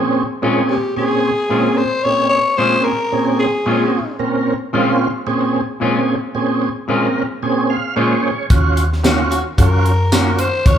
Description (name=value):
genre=straight-eighth soul blues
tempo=111 BPM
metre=4/4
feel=swing 54% on 16ths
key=Bb minor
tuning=A4 = 440 Hz
part: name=overdriven tonewheel organ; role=accompaniment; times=0.0-10.8 s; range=Bb2 to F5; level=-18 LUFS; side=right 2 dB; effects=slow rotary speaker, chorus vibrato
part: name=clean electric guitar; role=stabs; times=0.4-10.3 s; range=Bb2 to Gb4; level=-21 LUFS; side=left 3 dB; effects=spring reverb
part: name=growling tenor saxophone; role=melody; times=0.7-4.2, 9.3-10.8 s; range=Gb4 to Db5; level=-18 LUFS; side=left 2 dB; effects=none
part: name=vintage muted fingered electric bass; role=bass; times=8.5-10.8 s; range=Eb2 to Gb2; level=-17 LUFS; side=left 1 dB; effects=none
part: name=tight funk drum kit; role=drums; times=8.5-10.8 s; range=hi-hat, kick drum, snare drum, tambourine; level=-15 LUFS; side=equal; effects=none
room=wet large studio reverb, RT60 1.2 s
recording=band playing live in one room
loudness=-14 LUFS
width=side -9 dB against mid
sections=0.0-10.8 A section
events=tonewheel organ fill 7.4-8.5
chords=0.0 Bbm7; 8.5 Ebm7